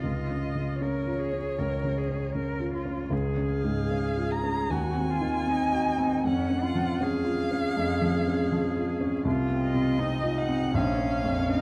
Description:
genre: classical, slow romantic movement for piano trio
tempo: 78 BPM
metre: 4/4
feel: rubato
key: unclear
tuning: A4 = 441 Hz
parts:
  - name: warm violin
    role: melody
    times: 0.0-11.6 s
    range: Db5 to Bb5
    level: -35 LUFS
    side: equal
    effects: none
  - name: clear cello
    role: second line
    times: 0.0-11.6 s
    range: Db4 to Bb4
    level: -35 LUFS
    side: equal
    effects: none
  - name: warm grand piano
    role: accompaniment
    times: 0.0-11.6 s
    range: Bb1 to Gb4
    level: -29 LUFS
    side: equal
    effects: none
room: wet concert hall reverb, RT60 2.3 s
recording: dark, warm production, vinyl crackle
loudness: -28 LUFS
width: mono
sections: 0.0-11.6 A section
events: none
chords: 0.0 Db69; 3.1 Db; 4.7 Ab7/Eb; 6.3 Db/F; 9.3 F5/C; 10.7 Bbm

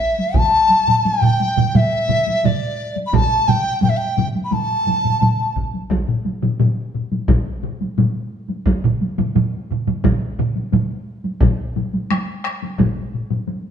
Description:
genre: japanese traditional, taiko drum ensemble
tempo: 87 BPM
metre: 4/4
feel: straight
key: A suspended pentatonic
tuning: A4 = 440 Hz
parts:
  - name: large dizi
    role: melody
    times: 0.0-5.6 s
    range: D5 to B5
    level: -18 LUFS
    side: left 1 dB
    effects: none
  - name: taiko ensemble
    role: percussion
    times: 0.0-12.9 s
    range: none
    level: -21 LUFS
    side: equal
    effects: none
  - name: taiko ensemble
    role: percussion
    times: 0.2-13.6 s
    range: none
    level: -23 LUFS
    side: right 1 dB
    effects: none
  - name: taiko ensemble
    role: percussion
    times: 0.4-13.5 s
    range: none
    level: -22 LUFS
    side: left 3 dB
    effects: none
  - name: taiko ensemble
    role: percussion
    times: 0.4-10.9 s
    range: none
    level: -21 LUFS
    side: right 4 dB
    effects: none
room: wet stone room reverb, RT60 1.4 s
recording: band playing live in one room, nothing above 11.0 kHz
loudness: -16 LUFS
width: side -8 dB against mid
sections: 0.0-5.9 A section; 5.9-13.7 B section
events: none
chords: none

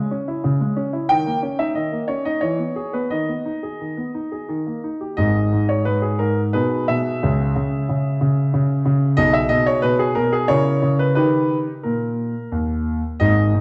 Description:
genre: classical-period piano sonatina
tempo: 89 BPM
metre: 3/4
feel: rubato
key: G# minor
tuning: A4 = 441 Hz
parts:
  - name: clear concert grand piano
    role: solo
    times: 0.0-13.6 s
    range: G#1 to G#5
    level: -20 LUFS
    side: equal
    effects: none
room: wet recital hall reverb, RT60 1.9 s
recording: dark, warm production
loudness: -20 LUFS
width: mono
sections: 0.0-5.2 A section; 5.2-13.6 B section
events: none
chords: 0.0 C#m; 1.1 D#5; 2.4 E; 3.1 G#m/D#; 4.5 D#; 5.2 G#5; 6.5 G#m/B; 7.2 C#m; 9.2 G#m/B; 10.5 A#dim/C#; 11.2 D#

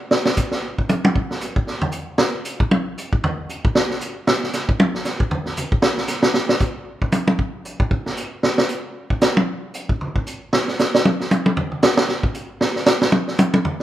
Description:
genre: jazz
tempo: 231 BPM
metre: 4/4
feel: swing 58% on 8ths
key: none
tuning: none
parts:
  - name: vintage drum kit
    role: drums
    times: 0.1-13.8 s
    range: hi-hat, kick drum, snare drum, toms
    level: -18 LUFS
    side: equal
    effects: none
room: light reverb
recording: minimal, uncompressed stereo recording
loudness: -18 LUFS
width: side -13 dB against mid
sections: 0.0-6.4 A section; 6.4-13.8 A section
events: drum solo 0.0-13.8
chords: none

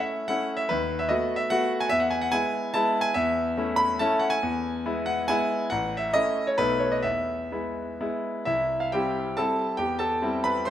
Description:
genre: classical, romantic triple-time dance for piano with dotted rhythms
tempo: 120-154 BPM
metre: 3/4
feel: rubato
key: E major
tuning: A4 = 440 Hz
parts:
  - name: clear concert grand piano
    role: solo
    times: 0.0-10.7 s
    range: A1 to C6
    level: -23 LUFS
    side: equal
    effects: none
room: wet recital hall reverb, RT60 1.7 s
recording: none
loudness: -23 LUFS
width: side -11 dB against mid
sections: 0.0-8.5 A section; 8.5-10.7 B section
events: none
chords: 0.0 A; 0.7 B7/D#; 1.9 E; 3.1 A/E; 4.4 E; 5.7 A; 6.6 B7; 7.0 E; 8.5 C; 9.8 C/E

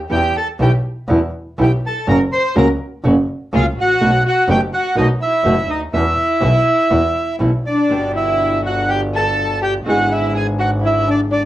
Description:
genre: tango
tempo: 123 BPM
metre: 4/4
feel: rubato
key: G major from 7.9 s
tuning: A4 = 439 Hz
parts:
  - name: clear double bass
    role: bass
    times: 0.0-11.5 s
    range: F#1 to E2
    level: -19 LUFS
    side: equal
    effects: none
  - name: bandoneon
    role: melody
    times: 0.1-11.4 s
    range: D5 to C6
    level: -18 LUFS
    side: right 2 dB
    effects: none
  - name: warm chamber violin section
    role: second line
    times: 0.1-11.4 s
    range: D4 to C5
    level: -20 LUFS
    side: left 2 dB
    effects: none
  - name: flamenco guitar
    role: accompaniment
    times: 0.1-11.5 s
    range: B2 to G#4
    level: -19 LUFS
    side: right 1 dB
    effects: none
room: moderate club reverb, RT60 0.7 s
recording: worn, warbling old tape, cassette tape, warbly pitch drift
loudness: -14 LUFS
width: side -14 dB against mid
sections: 0.0-7.9 A section; 7.9-11.5 B section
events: none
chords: 0.1 Em; 2.1 F#; 4.0 B7; 5.9 Em; 7.9 G; 9.9 E7/G#

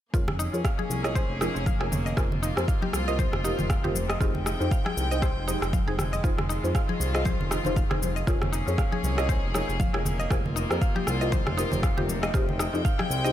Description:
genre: afro house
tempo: 118 BPM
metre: 4/4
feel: swing 57% on 16ths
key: unclear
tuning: A4 = 440 Hz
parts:
  - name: rich chamber string section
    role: sustained chords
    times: 0.1-13.3 s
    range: C3 to G5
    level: -34 LUFS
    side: left 1 dB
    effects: sidechain pumping
  - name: mallet-like synth pluck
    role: arpeggios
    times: 0.1-13.3 s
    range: Eb4 to F5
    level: -33 LUFS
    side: right 1 dB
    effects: chorus, sidechain pumping, dub echo
  - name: deep mellow chord stab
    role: stabs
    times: 0.1-13.3 s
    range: Eb4 to Db5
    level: -34 LUFS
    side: left 2 dB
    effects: chorus, sidechain pumping, dub echo
  - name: smooth synth bass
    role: bass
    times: 0.1-13.3 s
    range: F1 to F2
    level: -30 LUFS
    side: equal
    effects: sidechain pumping
  - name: electronic kick drum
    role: drums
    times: 0.1-13.0 s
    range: none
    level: -26 LUFS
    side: equal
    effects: small room ambience
  - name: electronic shaker and rim click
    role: drums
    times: 0.1-13.3 s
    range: none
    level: -33 LUFS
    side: equal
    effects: small room ambience, dub echo
  - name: congas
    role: percussion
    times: 0.3-13.2 s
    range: none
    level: -34 LUFS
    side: left 1 dB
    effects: dub echo
room: light reverb, digital ambience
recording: echo-heavy mix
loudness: -24 LUFS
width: side -12 dB against mid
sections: 0.1-13.3 A section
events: none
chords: 0.1 Bbm7/F; 2.2 C7sus4/F; 4.2 Abmaj7/F; 6.2 Fm7; 8.3 Bbm7/F; 10.3 C7sus4/F; 12.3 Abmaj7/F

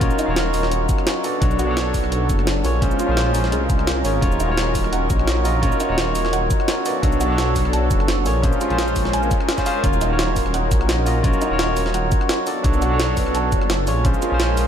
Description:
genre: liquid drum and bass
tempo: 171 BPM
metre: 4/4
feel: swing 53% on 16ths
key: Eb minor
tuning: A4 = 440 Hz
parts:
  - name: barky tine electric piano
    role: accompaniment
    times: 0.0-14.7 s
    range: Db4 to F5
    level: -23 LUFS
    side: equal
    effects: tape echo
  - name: lush unison pad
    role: sustained chords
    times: 0.0-14.7 s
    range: Gb3 to Bb4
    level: -26 LUFS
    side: left 1 dB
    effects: chorus, sidechain pumping
  - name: felt-muted upright piano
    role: arpeggios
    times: 0.0-14.7 s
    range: Db4 to A5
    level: -27 LUFS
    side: right 1 dB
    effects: ping-pong delay
  - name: swelling detuned saw bass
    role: bass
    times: 0.0-14.7 s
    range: Eb1 to C2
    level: -22 LUFS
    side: equal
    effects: none
  - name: electronic kick drum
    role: drums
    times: 0.0-14.1 s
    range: none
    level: -21 LUFS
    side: equal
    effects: none
  - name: jungle sampler-style drum kit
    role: drums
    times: 0.0-14.6 s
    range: cabasa, hi-hat, rim click, snare drum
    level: -26 LUFS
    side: right 1 dB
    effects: none
room: moderate cathedral reverb, RT60 6.9 s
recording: dreamy mix soaked in reverb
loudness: -17 LUFS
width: side -8 dB against mid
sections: 0.0-14.7 A section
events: none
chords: 0.0 Ebm7; 1.2 Bm7; 2.6 Bbm7; 4.2 Ebm7; 6.9 Bm7; 8.3 Bbm7; 9.8 Ebm7; 12.5 Bm7; 13.9 Bbm7

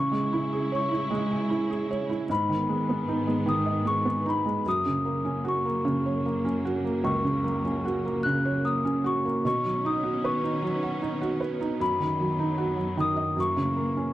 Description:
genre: children's music, lullaby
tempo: 76 BPM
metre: 3/4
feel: rubato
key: B major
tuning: A4 = 440 Hz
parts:
  - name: large celesta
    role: melody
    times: 0.0-14.1 s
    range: B5 to F#6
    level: -29 LUFS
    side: left 3 dB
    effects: none
  - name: felt-muted upright piano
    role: accompaniment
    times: 0.0-14.1 s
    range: C#2 to G#5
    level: -27 LUFS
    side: right 3 dB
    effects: none
  - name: clear symphonic string section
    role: sustained chords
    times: 0.0-14.1 s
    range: F#2 to E4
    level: -32 LUFS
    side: left 1 dB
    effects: none
room: light reverb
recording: dry, close 1970s-style studio recording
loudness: -24 LUFS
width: side -14 dB against mid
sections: 0.0-14.1 A section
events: none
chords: 0.0 C#m; 2.3 G#m; 4.7 F#; 9.4 Badd9; 11.8 B/F#; 13.4 F#7

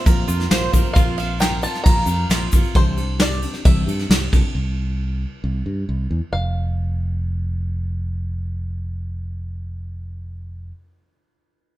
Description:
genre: indie folk with a building arrangement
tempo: 134 BPM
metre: 4/4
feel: straight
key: unclear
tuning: A4 = 440 Hz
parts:
  - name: bluegrass banjo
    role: melody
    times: 0.0-10.7 s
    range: C5 to Bb5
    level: -26 LUFS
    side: left 1 dB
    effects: none
  - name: felt-muted upright piano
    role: accompaniment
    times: 0.0-1.0 s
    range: Bb1 to C5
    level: -36 LUFS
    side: right 2 dB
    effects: none
  - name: picked steel-string acoustic guitar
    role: accompaniment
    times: 0.0-4.6 s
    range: C3 to Bb4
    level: -29 LUFS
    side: left 4 dB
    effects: none
  - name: tonewheel organ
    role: sustained chords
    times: 0.0-0.9 s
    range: C3 to Bb4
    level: -35 LUFS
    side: right 3 dB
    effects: none
  - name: mandolin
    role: arpeggios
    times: 0.0-2.7 s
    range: F4 to F5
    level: -28 LUFS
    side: right 5 dB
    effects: analog delay
  - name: fingered electric bass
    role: bass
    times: 0.1-10.7 s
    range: F1 to G2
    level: -23 LUFS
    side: equal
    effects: none
  - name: soft brush drum kit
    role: drums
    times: 0.1-4.4 s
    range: kick drum, ride cymbal, snare drum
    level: -17 LUFS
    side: equal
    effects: none
  - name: tube shaker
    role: percussion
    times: 0.1-2.7 s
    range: none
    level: -35 LUFS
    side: left 8 dB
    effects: none
room: light reverb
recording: band playing live in one room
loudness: -18 LUFS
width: side -15 dB against mid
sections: 0.0-6.3 A section; 6.3-9.9 B section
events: none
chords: 0.0 Bbsus2; 2.7 Cadd9; 6.3 N.C.

